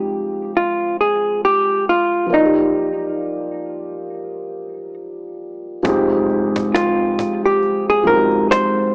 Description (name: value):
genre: lo-fi hip hop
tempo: 68 BPM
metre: 4/4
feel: swing 61% on 16ths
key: unclear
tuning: A4 = 439 Hz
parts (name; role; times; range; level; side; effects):
- hollow-body jazz guitar; melody; 0.0-8.9 s; Eb4 to C5; -16 LUFS; equal; low-pass filter
- felt-muted upright piano; accompaniment; 0.0-8.9 s; F3 to G5; -20 LUFS; equal; low-pass filter
- cajon; drums; 5.8-8.8 s; none; -26 LUFS; equal; none
- deep dub fingered electric bass; bass; 5.9-7.2 s; F1 to Ab1; -35 LUFS; equal; tube saturation
room: light reverb, studio ambience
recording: dry, gritty hardware recording, cassette tape, small speaker sound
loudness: -14 LUFS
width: side -33 dB against mid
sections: 0.0-5.9 A section; 5.9-8.9 B section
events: filter sweep 0.0-5.9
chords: 0.0 Fm7; 2.3 Ebmaj7; 5.9 Fm7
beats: 0.56 1.44 | 2.32 3.20 4.09 4.97 | 5.85 6.73 7.62 8.50